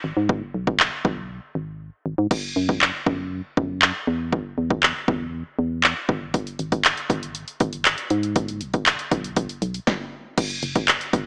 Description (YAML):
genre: dance-pop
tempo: 119 BPM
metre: 4/4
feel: straight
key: unclear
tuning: A4 = 441 Hz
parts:
  - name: organ-like FM bass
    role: bass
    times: 0.0-11.3 s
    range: F#1 to G#2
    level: -29 LUFS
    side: equal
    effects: sidechain pumping
  - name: house drum kit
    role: drums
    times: 0.3-11.3 s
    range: crash cymbal, handclaps, hi-hat, kick drum, snare drum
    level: -23 LUFS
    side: equal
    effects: none
room: light reverb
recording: small speaker sound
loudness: -23 LUFS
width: mono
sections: 0.0-2.3 A section; 2.3-10.4 B section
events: break 1.3-2.3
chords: none